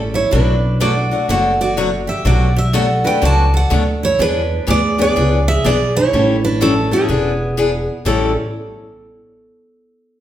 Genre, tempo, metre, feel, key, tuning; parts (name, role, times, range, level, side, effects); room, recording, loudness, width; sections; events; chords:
acoustic string swing (jazz manouche); 124 BPM; 4/4; swing 64% on 8ths; A major; A4 = 438 Hz
upright bass; bass; 0.0-8.3 s; E1 to E2; -18 LUFS; equal
picked steel-string acoustic guitar; second line; 0.1-8.4 s; B3 to D5; -23 LUFS; right 3 dB
picked steel-string acoustic guitar; melody; 0.2-8.4 s; G#4 to A5; -19 LUFS; right 2 dB
picked steel-string acoustic guitar; accompaniment; 0.3-8.3 s; A2 to A4; -19 LUFS; left 4 dB
wet large studio reverb, RT60 1.3 s; band playing live in one room; -13 LUFS; side -12 dB against mid
0.0-8.1 A section; 8.1-10.0 B section
0.3 Bm7; 4.2 E7; 6.1 A7; 7.1 E7; 8.1 A7